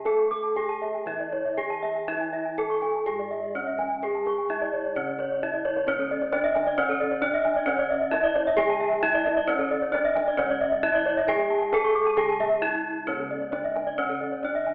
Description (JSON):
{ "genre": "Balinese gamelan", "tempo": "119-133 BPM", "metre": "4/4", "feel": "straight", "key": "C# pelog", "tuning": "A4 = 439 Hz", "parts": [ { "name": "gamelan-type bronze metallophone", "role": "melody", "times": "0.0-14.7 s", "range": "C#4 to A4-20c", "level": "-27 LUFS", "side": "equal", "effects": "none" }, { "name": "gamelan-type bronze metallophone", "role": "accompaniment", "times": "0.0-14.7 s", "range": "C#3 to A3-20c", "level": "-52 LUFS", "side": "equal", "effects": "none" }, { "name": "gamelan-type bronze metallophone", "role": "arpeggios", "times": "0.0-14.7 s", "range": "C#5 to D6+20c", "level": "-28 LUFS", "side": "equal", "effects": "none" }, { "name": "gamelan-type bossed gongs", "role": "bass", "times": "0.0-14.7 s", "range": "C#2 to A4-20c", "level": "-34 LUFS", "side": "equal", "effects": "none" }, { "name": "kendang", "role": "percussion", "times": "0.1-14.6 s", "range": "none", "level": "-42 LUFS", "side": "equal", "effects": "none" }, { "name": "gamelan-type bronze metallophone", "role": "arpeggios", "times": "0.3-14.7 s", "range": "A4-20c to D6+20c", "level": "-28 LUFS", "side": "equal", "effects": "none" } ], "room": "wet recital hall reverb, RT60 1.4 s", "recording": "recorded in a church or concert hall, telephone sound", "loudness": "-23 LUFS", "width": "side -28 dB against mid", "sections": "0.0-5.9 A section; 5.9-14.7 B section", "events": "drum fill 5.4-5.9, 12.6-13.1; break 12.4-13.1", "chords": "none", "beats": "| 0.05 0.56 1.06 1.57 | 2.07 2.57 3.06 3.55 | 4.03 4.50 4.97 5.43 | 5.88 6.33 6.78 7.23 | 7.68 8.13 8.58 9.03 | 9.48 9.93 10.38 10.83 | 11.28 11.73 12.18 12.63 | 13.08 13.53 13.98 14.43" }